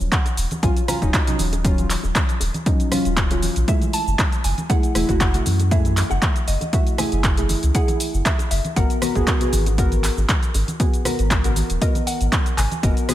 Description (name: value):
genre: deep house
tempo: 118 BPM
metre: 4/4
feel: swing 54% on 16ths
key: unclear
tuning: A4 = 438 Hz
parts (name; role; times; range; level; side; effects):
- deep mellow chord stab; stabs; 0.0-13.1 s; F3 to Bb4; -25 LUFS; equal; chorus, sidechain pumping, tape echo
- warm sub bass; bass; 0.0-12.9 s; Eb1 to Gb2; -21 LUFS; equal; tube saturation, sidechain pumping
- deep house drum kit; drums; 0.0-13.1 s; handclaps, hi-hat, rim click, shaker; -25 LUFS; equal; overdrive
- mallet-like synth pluck; melody; 0.1-13.1 s; Eb5 to Bb5; -30 LUFS; right 1 dB; chorus, phaser, vintage 12-bit sampler grit, diffuse ambient delay
- electronic kick drum; drums; 0.1-12.9 s; none; -20 LUFS; equal; overdrive
- congas and bongos; percussion; 0.1-13.1 s; none; -32 LUFS; right 1 dB; none
room: light reverb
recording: none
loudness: -17 LUFS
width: side -13 dB against mid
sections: 0.0-13.1 A section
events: none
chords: 0.0 Ebm9; 3.7 Gbm9; 8.8 Abm9